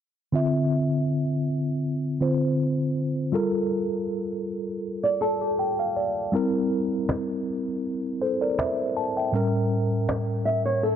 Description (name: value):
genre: contemporary R&B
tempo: 80 BPM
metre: 4/4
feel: swing 54% on 16ths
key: D minor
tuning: A4 = 436 Hz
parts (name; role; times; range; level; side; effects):
- mellow tine electric piano; accompaniment; 0.3-11.0 s; A2 to A5; -24 LUFS; equal; medium stereo tremolo
- nylon-string guitar; arpeggios; 5.0-11.0 s; G4 to E5; -25 LUFS; right 1 dB; tape echo
- cajon; drums; 7.1-10.3 s; none; -30 LUFS; right 1 dB; none
room: light reverb, studio reverb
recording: low-pass filter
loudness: -23 LUFS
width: side -9 dB against mid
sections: 0.3-11.0 A section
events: filter sweep 0.3-11.0; tine electric piano fill 4.8-6.3; kick muted 9.3-11.0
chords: 0.3 Dm9; 3.3 Gm9; 6.3 C7/G; 9.3 A7b9